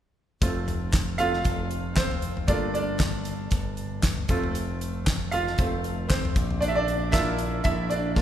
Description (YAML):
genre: piano-driven pop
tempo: 116 BPM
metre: 4/4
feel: swing 56% on 16ths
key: F major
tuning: A4 = 440 Hz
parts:
  - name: bright upright piano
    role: accompaniment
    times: 0.4-8.2 s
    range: A3 to F5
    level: -28 LUFS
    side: right 2 dB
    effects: none
  - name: modern bright picked electric bass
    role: bass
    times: 0.4-8.2 s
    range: F1 to Bb1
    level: -30 LUFS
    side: equal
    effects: none
  - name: damped 70s drum kit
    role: drums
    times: 0.4-8.2 s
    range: handclaps, hi-hat, kick drum, snare drum, toms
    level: -26 LUFS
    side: equal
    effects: none
room: moderate scoring stage reverb, RT60 2.1 s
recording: recorded in a church or concert hall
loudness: -24 LUFS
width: side -10 dB against mid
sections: 0.4-8.2 A section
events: upright piano solo 0.4-8.2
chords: 0.4 F; 2.5 Gm7; 4.3 F; 6.4 Bb